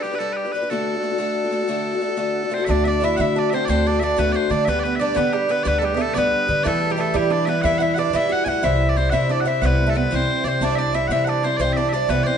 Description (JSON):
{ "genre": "celtic folk, Celtic slide", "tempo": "121 BPM (dotted quarters)", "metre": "12/8", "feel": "straight", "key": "D mixolydian", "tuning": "A4 = 441 Hz", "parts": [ { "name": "loud bright bagpipes", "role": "melody", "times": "0.0-12.4 s", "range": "G4 to G#5", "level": "-24 LUFS", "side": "equal", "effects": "none" }, { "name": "picked steel-string acoustic guitar", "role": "accompaniment", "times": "0.0-12.4 s", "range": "C3 to C5", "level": "-22 LUFS", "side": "left 2 dB", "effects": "none" }, { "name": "Irish bouzouki", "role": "second line", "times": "2.5-12.4 s", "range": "G3 to F#4", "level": "-23 LUFS", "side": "right 5 dB", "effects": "none" }, { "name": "upright bass", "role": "bass", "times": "2.7-12.2 s", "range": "C2 to E3", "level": "-24 LUFS", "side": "equal", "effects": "none" } ], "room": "wet stone room reverb, RT60 1.1 s", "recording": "band playing live in one room, nothing above 10.5 kHz", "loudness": "-18 LUFS", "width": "side -7 dB against mid", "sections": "0.0-2.7 A section; 2.7-12.4 B section", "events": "none", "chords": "0.0 G; 0.7 D; 4.7 G/D; 6.7 Em; 8.6 C" }